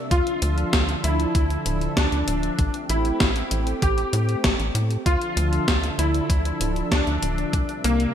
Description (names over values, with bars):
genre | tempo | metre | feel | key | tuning
synthwave | 97 BPM | 4/4 | straight | D minor | A4 = 439 Hz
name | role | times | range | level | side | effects
lush unison pad | sustained chords | 0.0-8.1 s | C3 to E5 | -29 LUFS | equal | chorus, sidechain pumping
warm electric grand piano | melody | 0.1-8.1 s | Bb3 to G4 | -26 LUFS | left 1 dB | ensemble chorus, ping-pong delay
tight sequencer bass | bass | 0.1-8.1 s | D1 to A2 | -24 LUFS | equal | none
electronic kick drum | drums | 0.1-7.7 s | none | -24 LUFS | equal | none
gated 80s digital drum machine | drums | 0.1-8.1 s | hi-hat, snare drum | -26 LUFS | equal | gated reverb, gated reverb snare
room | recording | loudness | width
light reverb | bright 1980s-style digital production | -20 LUFS | side -9 dB against mid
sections
0.0-8.1 A section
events
none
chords
0.1 Dmadd9; 2.6 Am7; 5.1 Dmadd9; 7.5 C7